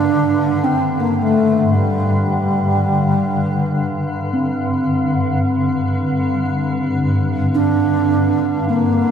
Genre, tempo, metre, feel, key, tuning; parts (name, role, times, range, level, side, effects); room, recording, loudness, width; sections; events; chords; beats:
world meditative, free-time meditation music; free time; G minor; A4 = 440 Hz
mellow hollow bass flute; melody; 0.0-9.1 s; G3 to D4; -17 LUFS; right 1 dB; tape echo
granular cloud pad; drone; 0.0-9.1 s; G2 to D3; -18 LUFS; equal; built-in reverb
bronze singing bowl; texture; 4.3-9.1 s; C4; -21 LUFS; left 1 dB; stereo widening
wet cathedral reverb, RT60 4.8 s; -15 LUFS; side -8 dB against mid
0.0-9.1 A section
free time